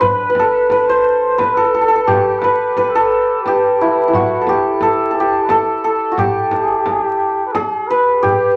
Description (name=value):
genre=Persian modal ensemble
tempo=88 BPM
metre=3/4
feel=straight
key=G dastgah mahur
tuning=A4 = 440 Hz
part: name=santur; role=melody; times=0.0-8.6 s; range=D4 to C5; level=-16 LUFS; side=equal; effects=none
part: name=breathy trumpet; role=second line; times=0.0-8.6 s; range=E4 to C5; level=-24 LUFS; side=equal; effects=none
part: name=frame drum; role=percussion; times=0.0-8.4 s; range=none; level=-28 LUFS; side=equal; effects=none
room=wet studio reverb, RT60 0.5 s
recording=vinyl crackle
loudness=-15 LUFS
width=mono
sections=0.0-8.2 A section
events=none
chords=none